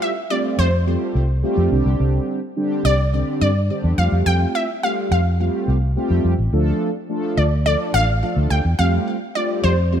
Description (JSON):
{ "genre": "dance-pop", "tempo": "106 BPM", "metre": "4/4", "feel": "straight", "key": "F major", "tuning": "A4 = 441 Hz", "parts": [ { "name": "wide unison pluck", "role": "melody", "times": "0.0-10.0 s", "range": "C5 to G5", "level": "-22 LUFS", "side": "equal", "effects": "ping-pong delay" }, { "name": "mellow synth brass", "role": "accompaniment", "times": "0.0-10.0 s", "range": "D3 to A4", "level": "-22 LUFS", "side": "right 1 dB", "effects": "chorus" }, { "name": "vintage muted fingered electric bass", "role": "bass", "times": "0.6-10.0 s", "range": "A1 to G2", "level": "-18 LUFS", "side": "equal", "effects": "none" } ], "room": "light reverb", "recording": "rough home demo mix", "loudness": "-17 LUFS", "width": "side -9 dB against mid", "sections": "0.0-10.0 A section", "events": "none", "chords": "0.0 Fadd9; 1.7 Csus2; 4.0 Fadd9; 6.5 Dm; 8.8 Fadd9" }